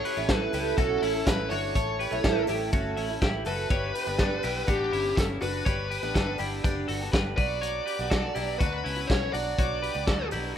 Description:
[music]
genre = jangly indie pop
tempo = 123 BPM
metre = 4/4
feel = straight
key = A mixolydian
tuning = A4 = 440 Hz
[part]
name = bluesy overdriven lead guitar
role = melody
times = 0.0-10.3 s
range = G4 to D5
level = -31 LUFS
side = left 1 dB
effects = distortion, plate reverb, tape echo
[part]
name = picked twelve-string acoustic guitar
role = accompaniment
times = 0.0-10.6 s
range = G2 to A4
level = -33 LUFS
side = right 6 dB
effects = plate reverb
[part]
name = twelve-string electric guitar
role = arpeggios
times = 0.0-10.6 s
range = C#4 to C#5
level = -33 LUFS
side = left 4 dB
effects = wide subtle chorus, plate reverb, tape echo
[part]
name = loose indie drum kit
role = drums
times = 0.0-10.4 s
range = hi-hat, kick drum, snare drum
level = -29 LUFS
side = equal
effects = none
[part]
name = vintage muted fingered electric bass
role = bass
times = 0.2-10.5 s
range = F#1 to D2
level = -35 LUFS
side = equal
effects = none
[sound]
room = light reverb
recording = rough home demo mix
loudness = -25 LUFS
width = side -9 dB against mid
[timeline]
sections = 0.0-10.6 A section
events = none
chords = 0.0 A; 7.4 Bm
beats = 0.28 0.77 1.26 | 1.75 2.24 2.73 3.22 | 3.71 4.20 4.68 5.17 | 5.66 6.15 6.64 7.13 | 7.62 8.11 8.60 9.09 | 9.58 10.07 10.56

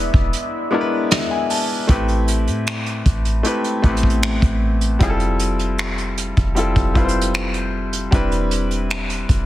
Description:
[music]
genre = contemporary R&B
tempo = 77 BPM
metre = 4/4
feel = straight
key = A minor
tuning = A4 = 437 Hz
[part]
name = clear grand piano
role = accompaniment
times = 0.0-9.5 s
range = G3 to A5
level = -21 LUFS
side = left 1 dB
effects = none
[part]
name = deep dark ambient pad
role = sustained chords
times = 0.0-1.9 s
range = E4 to E5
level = -28 LUFS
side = left 3 dB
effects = chorus, built-in reverb
[part]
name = clean 808-style bass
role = bass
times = 0.0-9.5 s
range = E1 to A2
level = -21 LUFS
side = equal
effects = none
[part]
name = vintage brush drum kit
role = drums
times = 0.1-9.5 s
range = finger snaps, hi-hat, kick drum, snare drum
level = -20 LUFS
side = equal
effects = soft clipping on snare
[sound]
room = studio ambience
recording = dense, heavily limited modern master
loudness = -17 LUFS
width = side -14 dB against mid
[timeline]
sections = 0.0-1.9 A section; 1.9-9.5 B section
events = break 0.3-1.9; grand piano fill 0.3-1.9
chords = 0.0 E7; 1.9 Am9; 5.0 Fmaj7; 8.1 Cmaj9/E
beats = 0.33 1.11 | 1.89 2.67 3.45 4.23 | 5.01 5.79 6.57 7.34 | 8.12 8.90

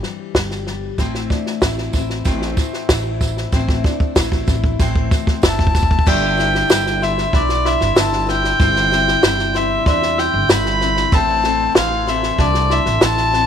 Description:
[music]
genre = indie folk with a building arrangement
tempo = 95 BPM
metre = 4/4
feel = straight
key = unclear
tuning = A4 = 440 Hz
[part]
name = fingerpicked steel-string acoustic guitar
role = accompaniment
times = 0.0-1.0 s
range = G2 to G4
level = -31 LUFS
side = left 14 dB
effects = none
[part]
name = compact cocktail drum kit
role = drums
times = 0.0-13.4 s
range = crash cymbal, kick drum, snare drum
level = -18 LUFS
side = equal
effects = none
[part]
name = upright bass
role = bass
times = 0.3-13.5 s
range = F#1 to E2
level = -22 LUFS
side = right 1 dB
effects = none
[part]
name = picked steel-string acoustic guitar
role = accompaniment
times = 1.0-13.5 s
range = A2 to C5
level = -25 LUFS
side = left 15 dB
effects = none
[part]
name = bright upright piano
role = arpeggios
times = 1.0-13.5 s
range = E3 to E4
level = -27 LUFS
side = right 13 dB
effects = none
[part]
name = tambourine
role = percussion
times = 1.0-13.2 s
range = none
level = -32 LUFS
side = right 13 dB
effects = none
[part]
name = glockenspiel with rubber mallets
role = second line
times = 5.4-13.5 s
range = A5 to G6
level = -25 LUFS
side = left 12 dB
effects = none
[part]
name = warm fiddle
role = melody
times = 5.5-13.5 s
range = D5 to B5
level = -18 LUFS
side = equal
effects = none
[part]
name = mellow tonewheel organ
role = sustained chords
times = 6.1-13.5 s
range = C3 to D4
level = -32 LUFS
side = right 15 dB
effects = chorus vibrato, slow rotary speaker
[sound]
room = light reverb, small room ambience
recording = 1960s-style stereo with parts hard left and right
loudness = -14 LUFS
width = side -8 dB against mid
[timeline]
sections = 0.0-6.1 A section; 6.1-13.5 B section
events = build-up 0.0-6.1; drum fill 0.0-6.1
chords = 0.0 C/G; 1.0 Am; 6.1 G6; 8.6 C/G; 11.1 Am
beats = 0.35 | 0.99 1.63 2.26 2.90 | 3.53 4.17 4.80 5.43 | 6.07 6.70 7.33 7.96 | 8.60 9.23 9.86 10.49 | 11.12 11.76 12.39 13.02

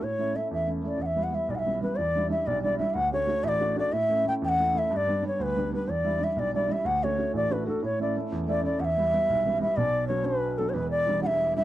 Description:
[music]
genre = celtic folk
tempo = 123 BPM (dotted quarters)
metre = 6/8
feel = straight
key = E dorian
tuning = A4 = 441 Hz
[part]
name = reedy bansuri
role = melody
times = 0.0-11.6 s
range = A4 to G5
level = -26 LUFS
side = equal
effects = none
[part]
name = warm baby grand piano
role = accompaniment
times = 0.0-11.6 s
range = E1 to F#4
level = -29 LUFS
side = right 1 dB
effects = none
[sound]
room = light reverb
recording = dark, warm production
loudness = -24 LUFS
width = side -14 dB against mid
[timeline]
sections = 0.0-2.0 A section; 2.0-9.8 A section; 9.8-11.6 B section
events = none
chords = 0.0 A; 1.0 Em; 2.0 Em7; 3.0 D; 3.9 A; 4.9 G; 5.9 Em7; 6.8 D; 7.8 A; 8.8 Em; 9.8 Bm; 10.7 Em7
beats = | 0.03 0.52 | 1.00 1.49 | 1.98 2.46 | 2.95 3.44 | 3.93 4.41 | 4.90 5.39 | 5.88 6.36 | 6.85 7.34 | 7.82 8.31 | 8.80 9.29 | 9.77 10.26 | 10.74 11.23

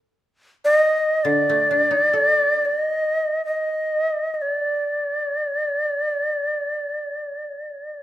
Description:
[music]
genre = japanese traditional, Japanese chamber music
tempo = free time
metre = none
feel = none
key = unclear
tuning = A4 = 440 Hz
[part]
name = bright shakuhachi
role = melody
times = 0.6-8.0 s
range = D5 to Eb5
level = -19 LUFS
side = equal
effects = none
[part]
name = koto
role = accompaniment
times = 1.2-3.8 s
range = D3 to A4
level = -26 LUFS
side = left 4 dB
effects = none
[sound]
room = light reverb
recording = minimal, uncompressed stereo recording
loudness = -19 LUFS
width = side -13 dB against mid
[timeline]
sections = 0.0-8.0 A section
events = none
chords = none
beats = free time

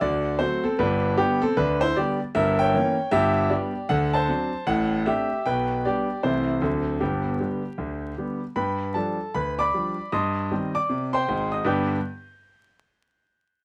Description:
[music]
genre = jazz, stride piano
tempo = 154 BPM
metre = 4/4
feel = swing 62% on 8ths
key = G major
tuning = A4 = 439 Hz
[part]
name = clear concert grand piano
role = solo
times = 0.0-12.0 s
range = G1 to G6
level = -24 LUFS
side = equal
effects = none
[sound]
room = light reverb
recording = close, detailed microphones, vinyl crackle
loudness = -24 LUFS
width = mono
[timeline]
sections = 0.0-8.6 A section; 8.6-11.7 B section; 11.7-13.2 C section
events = none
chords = 0.0 D7; 0.8 G; 2.3 Gdim7; 3.1 G; 3.9 D7; 4.7 D7/A; 5.4 G/B; 6.2 Am/C; 6.6 D7; 7.0 G; 8.6 G7; 10.1 Cm/G; 11.7 G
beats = 0.00 0.39 | 0.78 1.17 1.56 1.95 | 2.34 2.73 3.11 3.50 | 3.89 4.28 4.67 5.06 | 5.45 5.84 6.22 6.61 | 7.00 7.39 7.78 8.17 | 8.56 8.95 9.34 9.73 | 10.12 10.51 10.89 11.29 | 11.67

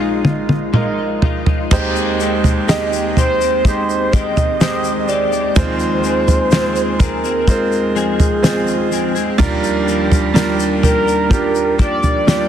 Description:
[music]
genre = pop ballad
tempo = 63 BPM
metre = 4/4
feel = straight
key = unclear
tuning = A4 = 437 Hz
[part]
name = mellow horn-like synth lead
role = melody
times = 0.0-12.5 s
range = Eb4 to Eb5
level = -19 LUFS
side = equal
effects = chorus
[part]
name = bright concert grand piano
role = accompaniment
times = 0.0-12.5 s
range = Bb1 to Eb5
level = -18 LUFS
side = right 4 dB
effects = none
[part]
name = direct-recorded clean electric guitar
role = arpeggios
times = 0.0-12.5 s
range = Bb2 to Ab4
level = -23 LUFS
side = left 10 dB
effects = ensemble chorus
[part]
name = damped 70s drum kit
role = drums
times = 0.2-12.5 s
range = crash cymbal, kick drum, snare drum, toms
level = -15 LUFS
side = equal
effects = none
[part]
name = tube shaker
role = percussion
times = 1.7-12.5 s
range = none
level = -32 LUFS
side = left 12 dB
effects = none
[sound]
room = light reverb, small room reverb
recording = dense, heavily limited modern master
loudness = -13 LUFS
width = side -9 dB against mid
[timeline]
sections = 0.0-1.7 A section; 1.7-12.5 B section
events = drum fill 0.0-1.7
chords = 0.0 Bb7sus4; 1.7 Abmaj7/Eb; 5.6 Fm/Eb; 9.4 Gm7/Eb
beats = 0.73 | 1.71 2.69 3.65 4.61 | 5.56 6.52 7.48 8.43 | 9.39 10.35 11.31 12.27

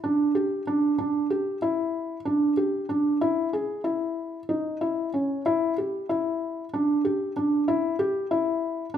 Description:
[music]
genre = contemporary instrumental, contemporary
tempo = 189 BPM (eighths)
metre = 7/8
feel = straight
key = unclear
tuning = A4 = 440 Hz
[part]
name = felt-muted upright piano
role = solo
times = 0.0-9.0 s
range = Db4 to G#4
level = -24 LUFS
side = equal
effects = none
[sound]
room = moderate recital hall reverb, RT60 1.4 s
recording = none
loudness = -24 LUFS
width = side -9 dB against mid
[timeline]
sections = 0.0-9.0 A section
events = none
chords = none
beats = 0.03 0.35 0.67 | 0.99 1.30 1.62 1.94 2.26 2.57 2.89 | 3.21 3.53 3.85 4.17 4.49 4.81 5.14 | 5.46 5.78 6.10 6.42 6.73 7.05 7.36 | 7.68 7.99 8.31 8.62 8.94

